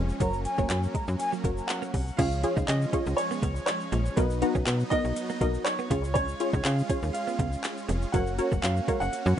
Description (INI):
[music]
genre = dance-pop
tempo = 121 BPM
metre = 4/4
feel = straight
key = unclear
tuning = A4 = 436 Hz
[part]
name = wide unison pluck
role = accompaniment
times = 0.0-9.3 s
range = B3 to A#5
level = -31 LUFS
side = left 1 dB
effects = sidechain pumping
[part]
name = supersaw chords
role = sustained chords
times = 0.0-9.4 s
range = E#3 to F#4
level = -37 LUFS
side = right 1 dB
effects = sidechain pumping
[part]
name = direct-recorded clean electric guitar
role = riff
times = 0.0-9.3 s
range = F#3 to D#4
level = -35 LUFS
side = right 8 dB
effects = ensemble chorus
[part]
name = slap-like FM bass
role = bass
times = 0.0-9.3 s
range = E#1 to C#3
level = -28 LUFS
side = equal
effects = sidechain pumping
[part]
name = tube shaker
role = percussion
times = 0.1-9.4 s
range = none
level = -50 LUFS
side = left 3 dB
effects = none
[part]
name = breathy concert flute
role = melody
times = 0.2-1.8 s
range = G#5 to A#5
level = -33 LUFS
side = left 1 dB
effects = sidechain pumping, ping-pong delay
[part]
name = smooth R&B drum kit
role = drums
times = 0.2-9.3 s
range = crash cymbal, handclaps, hi-hat, kick drum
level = -30 LUFS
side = equal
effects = overdrive
[part]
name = warm baby grand piano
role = melody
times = 1.7-9.4 s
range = B4 to F#5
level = -32 LUFS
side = right 2 dB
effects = ping-pong delay
[sound]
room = light reverb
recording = rough home demo mix, nothing above 10.5 kHz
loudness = -25 LUFS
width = side -10 dB against mid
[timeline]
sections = 0.0-2.2 A section; 2.2-9.4 B section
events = none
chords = 0.2 F#; 2.2 C#; 4.2 Bmaj7; 5.9 C#; 8.1 F#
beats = | 0.20 0.70 1.20 1.69 | 2.19 2.68 3.18 3.68 | 4.17 4.67 5.16 5.66 | 6.16 6.65 7.15 7.64 | 8.14 8.63 9.13